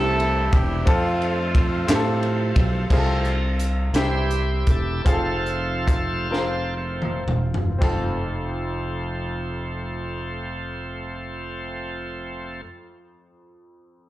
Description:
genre	slow gospel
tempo	36-59 BPM (dotted quarters)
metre	6/8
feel	straight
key	F major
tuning	A4 = 440 Hz
part	mellow horn section	melody	0.0-2.2 s	F3 to A4	-25 LUFS	right 1 dB	slapback echo
part	clear grand piano	accompaniment	0.0-14.1 s	F2 to C5	-28 LUFS	left 1 dB	slapback echo
part	bright tonewheel organ	sustained chords	0.0-12.6 s	E3 to C5	-30 LUFS	right 2 dB	slow rotary speaker, overdrive
part	fingered electric bass	bass	0.0-12.6 s	E1 to A2	-26 LUFS	equal	none
part	crisp fusion drum kit	drums	0.2-8.1 s	crash cymbal, hi-hat, kick drum, ride cymbal, snare drum, splash cymbal, toms	-23 LUFS	equal	none
part	group handclap	percussion	1.9-2.2 s	none	-33 LUFS	left 2 dB	none
room	light reverb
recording	live gig heard through the venue's PA, club reverb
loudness	-21 LUFS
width	side -15 dB against mid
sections	0.0-2.9 A section; 2.9-7.8 B section; 7.8-14.1 C section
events	slowing down 2.9-7.8; tonewheel organ solo 2.9-7.8; drum fill 6.3-7.8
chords	0.0 C; 0.9 F; 2.9 F/C; 3.9 C; 5.0 F

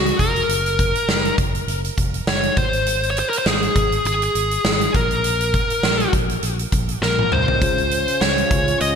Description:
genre	1980s-style pop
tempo	101 BPM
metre	4/4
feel	swing 55% on 16ths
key	unclear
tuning	A4 = 440 Hz
part	high-gain lead guitar	melody	0.0-9.0 s	Ab4 to Eb5	-20 LUFS	left 1 dB	distortion, ping-pong delay
part	fingered electric bass	bass	0.0-9.0 s	F1 to Db2	-25 LUFS	equal	none
part	huge arena drum kit	drums	0.1-9.0 s	hi-hat, kick drum, snare drum, toms	-21 LUFS	right 1 dB	gated reverb
part	mellow FM electric piano	accompaniment	7.6-9.0 s	Db3 to C5	-27 LUFS	left 3 dB	chorus
part	warm analog pad	sustained chords	7.6-9.0 s	Db3 to F4	-28 LUFS	right 2 dB	chorus, tremolo
room	moderate lush hall reverb, RT60 1.9 s, small room reverb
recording	bright 1980s-style digital production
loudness	-17 LUFS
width	side -6 dB against mid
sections	0.0-9.0 A section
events	drum fill 7.0-7.6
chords	0.5 Gb; 2.6 Ab; 4.9 N.C.; 7.6 Dbmaj7

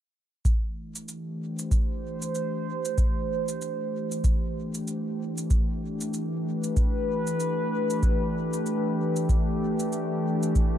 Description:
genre	ambient dub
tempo	95 BPM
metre	4/4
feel	swing 59% on 16ths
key	unclear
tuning	A4 = 437 Hz
part	warbly tape-like pad	sustained chords	0.8-10.8 s	E3 to C5	-28 LUFS	equal	chorus, built-in reverb
part	electronic kick drum	drums	0.5-10.7 s	none	-24 LUFS	equal	none
part	shaker	drums	0.5-10.7 s	none	-38 LUFS	right 2 dB	overdrive
room	little or no reverb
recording	dark, warm production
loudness	-25 LUFS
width	side -10 dB against mid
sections	0.5-10.8 A section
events	none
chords	0.5 Dsus2; 5.5 Em7

